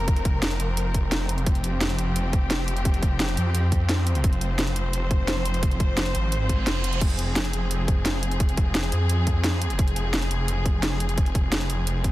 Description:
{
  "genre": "dark technical drum and bass",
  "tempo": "173 BPM",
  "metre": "4/4",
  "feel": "straight",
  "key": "F minor",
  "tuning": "A4 = 440 Hz",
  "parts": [
    { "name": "muted studio string section", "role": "sustained chords", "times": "0.0-12.1 s", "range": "F3 to C5", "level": "-30 LUFS", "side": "left 1 dB", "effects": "sidechain pumping" },
    { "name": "snarling distorted saw bass", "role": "bass", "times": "0.0-12.1 s", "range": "F1 to F2", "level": "-25 LUFS", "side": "equal", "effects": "distortion, overdrive, sidechain pumping" },
    { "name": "drum and bass drum kit", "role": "drums", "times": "0.1-12.1 s", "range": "crash cymbal, hi-hat, snare drum", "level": "-28 LUFS", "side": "equal", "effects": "overdrive" },
    { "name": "electronic kick drum", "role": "drums", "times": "0.1-12.1 s", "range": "none", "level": "-22 LUFS", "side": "equal", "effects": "overdrive" },
    { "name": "reverse cymbal", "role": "sound effects", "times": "6.5-7.0 s", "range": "none", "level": "-35 LUFS", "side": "right 6 dB", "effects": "none" }
  ],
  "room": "little or no reverb",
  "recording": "dense, heavily limited modern master",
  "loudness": "-21 LUFS",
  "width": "side -16 dB against mid",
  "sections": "0.0-12.1 A section",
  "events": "reverse cymbal 6.5-7.0",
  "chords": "0.0 Fmadd9",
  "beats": "| 0.08 0.42 0.77 1.12 | 1.47 1.81 2.16 2.51 | 2.85 3.20 3.55 3.89 | 4.24 4.59 4.93 5.28 | 5.63 5.97 6.32 6.67 | 7.01 7.36 7.71 8.05 | 8.40 8.75 9.10 9.44 | 9.79 10.14 10.48 10.83 | 11.18 11.52 11.87"
}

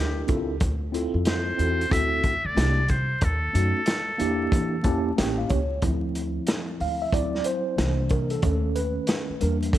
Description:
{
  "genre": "hip hop, jazz-hop",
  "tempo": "92 BPM",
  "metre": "4/4",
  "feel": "swing 64% on 16ths",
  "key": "D minor",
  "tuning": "A4 = 440 Hz",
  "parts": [
    { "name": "trumpet with metal mute", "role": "melody", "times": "0.0-5.2 s", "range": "G4 to E5", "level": "-27 LUFS", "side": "left 1 dB", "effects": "none" },
    { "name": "mellow tine electric piano", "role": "accompaniment", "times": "0.0-9.8 s", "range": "D#3 to A5", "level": "-27 LUFS", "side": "right 1 dB", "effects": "medium stereo tremolo" },
    { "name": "upright bass", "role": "bass", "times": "0.0-9.8 s", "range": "A1 to E3", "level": "-27 LUFS", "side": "equal", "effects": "none" },
    { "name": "crunchy breakbeat drum kit", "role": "drums", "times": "0.3-9.8 s", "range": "hi-hat, kick drum, snare drum", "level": "-27 LUFS", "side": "equal", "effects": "none" }
  ],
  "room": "light reverb, small room ambience",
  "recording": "vinyl crackle",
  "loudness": "-22 LUFS",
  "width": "side -13 dB against mid",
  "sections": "0.0-5.8 A section; 5.8-9.8 B section",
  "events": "tine electric piano fill 4.5-5.8; tine electric piano solo 5.8-9.8",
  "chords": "0.0 Em7b5; 0.6 Dm9; 1.9 D7; 2.6 C9; 3.2 D#m7b5; 4.2 Em7b5; 5.2 A7b9; 5.8 Dm9; 7.1 D7; 7.8 C9; 8.4 B7/D#",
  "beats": "| 0.61 1.26 1.91 2.56 | 3.22 3.87 4.52 5.17 | 5.83 6.48 7.13 7.78 | 8.43 9.09 9.74"
}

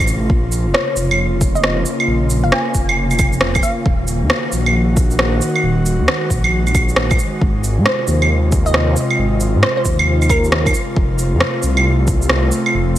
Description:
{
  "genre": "future garage",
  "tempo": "135 BPM",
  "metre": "4/4",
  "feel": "swing 64% on 16ths",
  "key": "Bb minor",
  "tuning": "A4 = 439 Hz",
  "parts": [
    { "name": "airy breathy pad", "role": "sustained chords", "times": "0.0-13.0 s", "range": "C3 to Gb4", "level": "-21 LUFS", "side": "equal", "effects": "chorus, sidechain pumping" },
    { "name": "swelling detuned saw bass", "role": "bass", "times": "0.0-13.0 s", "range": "Eb1 to Ab2", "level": "-17 LUFS", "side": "equal", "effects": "sidechain pumping" },
    { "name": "electronic shaker, claves and rim click", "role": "drums", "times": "0.0-13.0 s", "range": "none", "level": "-18 LUFS", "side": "right 1 dB", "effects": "overdrive" },
    { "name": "electronic kick drum", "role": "drums", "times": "0.3-12.2 s", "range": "none", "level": "-17 LUFS", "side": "equal", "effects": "overdrive" },
    { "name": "glassy wavetable pluck", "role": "melody", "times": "0.7-3.9, 7.9-10.7 s", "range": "Bb4 to Ab5", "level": "-24 LUFS", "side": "equal", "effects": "chorus, dub echo" }
  ],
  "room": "light reverb",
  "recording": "none",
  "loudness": "-13 LUFS",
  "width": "side -13 dB against mid",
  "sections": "0.0-13.0 A section",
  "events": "none",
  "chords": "0.3 Bbm; 3.9 Ebm; 7.4 Ab6; 11.0 F",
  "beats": "| 0.30 0.74 1.19 1.63 | 2.08 2.52 2.96 3.41 | 3.85 4.30 4.74 5.19 | 5.63 6.08 6.52 6.96 | 7.41 7.85 8.30 8.74 | 9.19 9.63 10.08 10.52 | 10.96 11.41 11.85 12.30 | 12.74"
}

